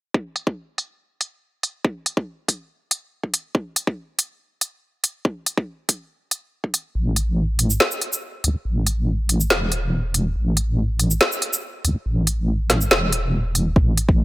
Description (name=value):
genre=deep dubstep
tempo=141 BPM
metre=4/4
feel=half-time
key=unclear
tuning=A4 = 441 Hz
part: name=electronic kick drum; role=drums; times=0.1-6.7, 13.8-14.2 s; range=none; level=-19 LUFS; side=equal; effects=high-pass filter on kick
part: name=deep house drum kit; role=drums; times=0.4-14.1 s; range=hi-hat, shaker, snare drum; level=-19 LUFS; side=equal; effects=low-pass filter on hats, low-pass filter on perc, low-pass filter on snare
part: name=wobble bass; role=bass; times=7.0-14.2 s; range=E1 to D2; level=-20 LUFS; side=equal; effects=chorus
room=light reverb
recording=none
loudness=-20 LUFS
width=side -19 dB against mid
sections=0.1-7.0 A section; 7.0-14.2 B section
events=build-up 7.0-14.2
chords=none